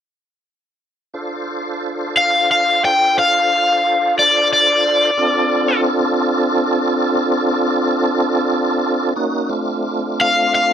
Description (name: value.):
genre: blues.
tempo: 60 BPM (dotted quarters).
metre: 12/8.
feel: straight.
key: D minor.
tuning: A4 = 440 Hz.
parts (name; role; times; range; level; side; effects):
tonewheel organ; sustained chords; 1.1-10.7 s; A3 to C5; -18 LUFS; right 1 dB; slow rotary speaker, overdrive, chorus vibrato.
cranked stack guitar; melody; 2.2-10.7 s; D5 to G5; -13 LUFS; left 2 dB; overdrive.
room: moderate studio reverb, RT60 0.7 s.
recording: none.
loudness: -14 LUFS.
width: side -9 dB against mid.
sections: 1.1-10.7 A section.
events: none.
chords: 1.1 Dm7.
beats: | 1.14 2.14 3.14 4.15 | 5.15 6.15 7.16 8.16 | 9.16 10.17.